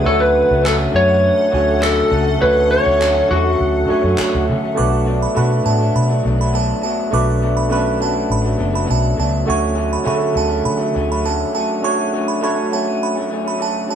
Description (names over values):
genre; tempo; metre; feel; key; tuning
indie pop, bedroom pop; 102 BPM; 4/4; straight; B minor; A4 = 440 Hz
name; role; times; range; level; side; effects
electric slide guitar; melody; 0.0-4.4 s; F#4 to C#5; -15 LUFS; left 1 dB; none
barky tine electric piano; accompaniment; 0.0-13.9 s; A3 to G#5; -21 LUFS; right 3 dB; none
electric guitar through a small old amp; accompaniment; 0.0-13.9 s; B2 to D4; -22 LUFS; left 3 dB; vibrato effect
granular cloud pad; sustained chords; 0.0-4.7 s; A4 to F#5; -28 LUFS; equal; built-in reverb
vintage muted fingered electric bass; bass; 0.1-11.4 s; F#1 to D3; -19 LUFS; equal; none
group handclap; percussion; 0.7-4.3 s; none; -26 LUFS; right 1 dB; none
glassy synth bell; second line; 4.8-13.9 s; A5 to D6; -24 LUFS; right 7 dB; chorus
room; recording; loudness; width
light reverb; band playing live in one room; -14 LUFS; side -8 dB against mid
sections
0.0-4.8 A section; 4.8-13.9 B section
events
none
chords
0.1 Dmaj7; 4.8 Bm7; 9.5 Dmaj7